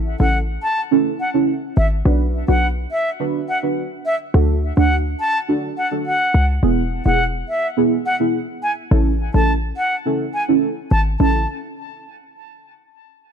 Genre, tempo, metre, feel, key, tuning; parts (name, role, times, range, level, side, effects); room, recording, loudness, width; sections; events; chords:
dancehall; 105 BPM; 4/4; straight; A major; A4 = 440 Hz
short 808-style bass; bass; 0.0-11.5 s; E1 to D2; -17 LUFS; left 1 dB
bright concert flute; melody; 0.2-11.5 s; E5 to A5; -22 LUFS; left 1 dB; ping-pong delay
deep mellow chord stab; accompaniment; 0.2-11.4 s; B3 to B4; -20 LUFS; right 3 dB; chorus, phaser
light reverb, studio ambience; dark, warm production; -16 LUFS; side -7 dB against mid
0.0-11.2 A section; 11.2-13.3 B section
0.0 A; 2.1 Bm; 4.3 D; 6.6 E; 8.9 A